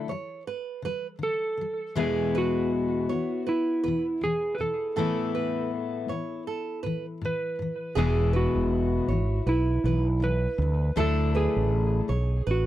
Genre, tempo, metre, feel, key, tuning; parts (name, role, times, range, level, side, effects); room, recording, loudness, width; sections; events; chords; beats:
pop; 80 BPM; 4/4; swing 60% on 16ths; E mixolydian; A4 = 440 Hz
clean lap steel guitar; melody; 0.0-12.7 s; E4 to B4; -28 LUFS; right 2 dB; tape echo
fingerpicked steel-string acoustic guitar; accompaniment; 0.0-12.4 s; E2 to E4; -30 LUFS; left 5 dB
nylon-string guitar; arpeggios; 0.1-12.7 s; G#4 to C#5; -34 LUFS; right 8 dB
fretless electric bass; bass; 8.0-12.7 s; E1 to D2; -25 LUFS; right 1 dB
light reverb; dry, close 1970s-style studio recording; -24 LUFS; side -13 dB against mid
0.0-12.7 A section
0.0 D; 2.0 E; 5.0 Asus2; 8.0 E; 10.6 Dadd9
0.47 1.22 | 1.97 2.72 3.47 4.22 | 4.97 5.72 6.47 7.22 | 7.97 8.72 9.47 10.22 | 10.97 11.72 12.47